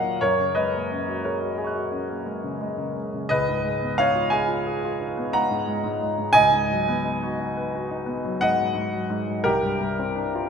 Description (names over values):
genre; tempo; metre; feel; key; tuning
classical, impressionist solo piano; 58 BPM (dotted quarters); 9/8; rubato; unclear; A4 = 441 Hz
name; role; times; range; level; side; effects
clear grand piano; solo; 0.0-10.5 s; C2 to Gb6; -22 LUFS; equal; none
room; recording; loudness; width
moderate concert hall reverb, RT60 2.4 s; none; -22 LUFS; side -6 dB against mid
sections
0.0-10.5 A section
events
none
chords
0.2 Gbadd9; 3.3 Db9; 6.4 B69/C#; 9.4 C9sus4